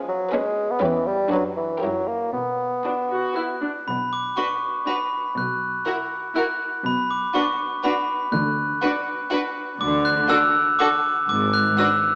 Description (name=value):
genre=cinematic, playful, whimsical film cue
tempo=121 BPM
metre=3/4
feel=straight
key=B minor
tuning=A4 = 441 Hz
part: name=rich chamber violin section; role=melody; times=0.0-11.9 s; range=A4 to B4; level=-34 LUFS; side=equal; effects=none
part: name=rich chamber violin section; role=second line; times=0.0-11.9 s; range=F#4 to G#4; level=-33 LUFS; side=equal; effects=none
part: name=rich chamber viola section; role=accompaniment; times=0.0-11.9 s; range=C#4 to F#4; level=-31 LUFS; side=equal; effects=none
part: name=warm bassoon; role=accompaniment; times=0.1-3.6 s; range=E3 to B3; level=-26 LUFS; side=equal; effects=none
part: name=warm chamber cello section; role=bass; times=0.8-11.7 s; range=E2 to D3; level=-30 LUFS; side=equal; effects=none
part: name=glockenspiel with brass mallets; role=melody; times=3.4-12.2 s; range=B5 to F#6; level=-24 LUFS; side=equal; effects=none
part: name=rich chamber double bass section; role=bass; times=3.9-11.7 s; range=G#1 to D2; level=-33 LUFS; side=equal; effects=none
room=wet scoring stage reverb, RT60 1.8 s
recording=small speaker sound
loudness=-23 LUFS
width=mono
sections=0.0-3.9 A section; 3.9-12.2 B section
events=none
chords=0.0 C#5; 0.8 C#m7b5/E; 1.3 Bm/F#; 1.8 F#7b9; 2.3 B5; 3.9 N.C.; 8.3 Bm/D (rootless); 11.3 G#7(b5, no3)